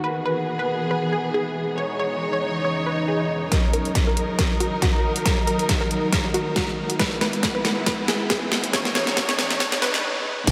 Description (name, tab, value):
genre	heavy wobble dubstep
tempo	138 BPM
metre	4/4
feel	swing 55% on 16ths, half-time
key	Eb phrygian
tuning	A4 = 440 Hz
part	unison pluck	melody	0.0-10.0 s	Gb4 to Db5	-30 LUFS	equal	diffuse ambient delay
part	warm symphonic string section	sustained chords	0.0-10.5 s	E3 to Db5	-29 LUFS	equal	sidechain pumping, low-pass filter
part	deep dark ambient pad	texture	0.0-10.0 s	Fb3 to Gb5	-34 LUFS	equal	chorus, built-in reverb, sidechain pumping
part	swell, riser and sub drop	sound effects	2.8-10.5 s	none	-36 LUFS	equal	none
part	dubstep drum kit	drums	3.5-10.5 s	crash cymbal, hi-hat, snare drum	-26 LUFS	equal	overdrive
part	electronic kick drum	drums	3.5-10.5 s	none	-26 LUFS	equal	overdrive
part	growl bass	bass	10.5 s	Eb1	-24 LUFS	equal	chorus, overdrive
room	wet huge ambient reverb, RT60 7.1 s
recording	dreamy mix soaked in reverb, high-pass filter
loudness	-23 LUFS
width	mono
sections	0.0-3.5 A section; 3.5-10.5 B section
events	swell 2.8-3.5; build-up 3.5-10.5; drum fill 3.5-10.0; filter sweep on synth pluck 3.5-10.5; filter sweep 3.5-10.5; stop 10.0-10.5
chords	0.0 E; 1.8 Dbmadd9; 3.5 Ebm; 7.0 E; 8.7 Dbmadd9